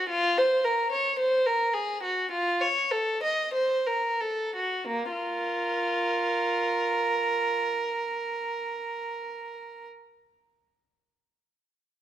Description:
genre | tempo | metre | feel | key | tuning
classical, baroque-style suite movement for unaccompanied violin | 42-56 BPM | 4/4 | rubato | Bb minor | A4 = 440 Hz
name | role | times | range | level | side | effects
rich violin | solo | 0.0-9.9 s | Bb3 to Eb5 | -25 LUFS | right 1 dB | none
room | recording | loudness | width
light reverb | minimal, uncompressed stereo recording | -25 LUFS | side -11 dB against mid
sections
0.0-4.9 A section; 4.9-10.0 B section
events
slowing down 0.0-4.9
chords
0.1 Bbm/F; 2.3 F7; 4.9 Bb5

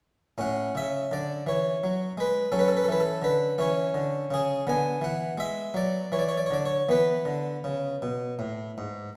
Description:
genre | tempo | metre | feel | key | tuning
classical, baroque-style suite movement for harpsichord | 52-57 BPM (dotted quarters) | 6/8 | rubato | A major | A4 = 439 Hz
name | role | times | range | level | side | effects
harpsichord | solo | 0.4-9.1 s | G#2 to G#5 | -28 LUFS | equal | none
room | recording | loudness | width
wet recital hall reverb, RT60 1.4 s | heard from further back in the room | -27 LUFS | mono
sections
0.4-9.2 A section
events
none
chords
0.4 A; 2.5 F#5; 3.6 C#m; 4.7 Bm/D; 6.9 E

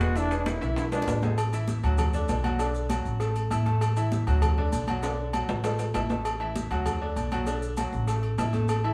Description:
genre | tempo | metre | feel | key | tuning
latin, salsa | 197 BPM | 4/4 | straight | unclear | A4 = 438 Hz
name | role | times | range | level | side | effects
growling trombone | melody | 0.0-1.2 s | D4 to F#4 | -33 LUFS | equal | none
bright upright piano | accompaniment | 0.0-8.9 s | D3 to E6 | -35 LUFS | equal | none
upright bass | bass | 0.0-8.9 s | E1 to D2 | -30 LUFS | equal | none
congas | percussion | 0.0-8.9 s | none | -36 LUFS | equal | none
maracas | percussion | 0.0-8.8 s | none | -50 LUFS | equal | none
timbales and agogo bells | percussion | 0.0-8.9 s | none | -35 LUFS | equal | none
bongos and cowbell | percussion | 0.2-8.8 s | none | -41 LUFS | equal | none
room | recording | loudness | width
wet studio reverb, RT60 0.7 s | band playing live in one room, small room ambience | -27 LUFS | mono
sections
0.0-1.4 A section; 1.4-8.9 B section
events
drum fill 0.6-1.4, 5.0-6.2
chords
0.2 E7; 1.4 A5; 2.0 D6; 2.6 Bm7; 3.2 A5; 4.4 D6; 5.0 Bm7; 5.6 A5; 6.9 D6; 7.5 Bm7; 8.1 A5

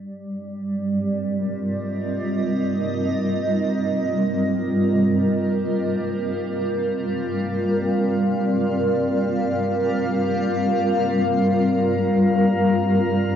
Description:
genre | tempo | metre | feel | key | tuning
ambient | free time | none | none | unclear | A4 = 442 Hz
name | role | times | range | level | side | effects
granular cloud pad | sustained chords | 0.1-13.4 s | G3 to F5 | -19 LUFS | equal | built-in reverb, cassette tape
warm symphonic cello section | bass | 11.5-13.4 s | G2 | -30 LUFS | equal | none
drifting glass-harmonics texture | texture | 11.8-13.4 s | Bb4 to Bb5 | -32 LUFS | equal | chorus, built-in reverb, cassette tape
room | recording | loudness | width
wet studio reverb, RT60 0.5 s | home recording on cassette | -19 LUFS | side -9 dB against mid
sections
0.0-11.6 A section; 11.6-13.4 B section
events
none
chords
0.0 Cm; 11.6 Gm

